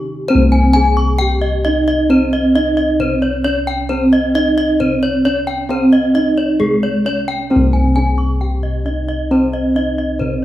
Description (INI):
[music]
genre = Balinese gamelan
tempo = 133 BPM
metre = 4/4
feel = straight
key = C pelog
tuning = A4 = 440 Hz
[part]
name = gamelan-type bronze metallophone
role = melody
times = 0.0-10.4 s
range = Ab3 to Ab4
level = -17 LUFS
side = right 1 dB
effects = none
[part]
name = gamelan-type bossed gongs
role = bass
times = 0.0-10.4 s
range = C2 to Db4+35c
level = -17 LUFS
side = left 1 dB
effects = none
[part]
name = gamelan-type bronze metallophone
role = arpeggios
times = 0.3-10.4 s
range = Ab4 to Db6+35c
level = -19 LUFS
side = left 2 dB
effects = none
[sound]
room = wet large studio reverb, RT60 1.3 s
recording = band playing live in one room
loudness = -12 LUFS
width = side -14 dB against mid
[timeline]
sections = 0.3-10.4 A section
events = break 0.0-0.3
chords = none